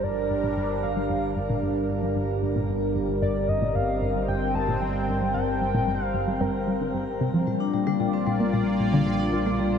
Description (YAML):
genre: ambient, sequencer-driven space music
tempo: 113 BPM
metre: 4/4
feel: straight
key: G minor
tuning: A4 = 440 Hz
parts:
  - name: pulse-width lead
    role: melody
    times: 0.0-6.9 s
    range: Bb4 to A5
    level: -30 LUFS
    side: equal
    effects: chorus, shimmer reverb, ping-pong delay
  - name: sweeping resonant pad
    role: sustained chords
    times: 0.0-9.8 s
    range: G3 to D5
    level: -27 LUFS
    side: equal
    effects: chorus, shimmer reverb
  - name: tight sequenced synth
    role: riff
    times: 0.0-9.7 s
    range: G2 to Bb3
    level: -29 LUFS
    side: left 1 dB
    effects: chorus, vintage 12-bit sampler grit, ping-pong delay
  - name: fat analog bass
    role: bass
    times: 0.0-9.8 s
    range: G1 to Bb1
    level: -32 LUFS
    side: equal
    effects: none
  - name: vibraphone with medium mallets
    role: arpeggios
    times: 7.5-9.8 s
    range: G3 to D4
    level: -25 LUFS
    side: moving between left 8 dB and equal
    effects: auto-pan, shimmer reverb, ping-pong delay
room: wet huge ambient reverb, RT60 8.5 s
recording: in a vast, echoing space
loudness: -23 LUFS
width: side -7 dB against mid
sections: 0.0-9.8 A section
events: filter sweep on synth arpeggio sound 0.0-9.8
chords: 0.0 Gm; 7.5 Bb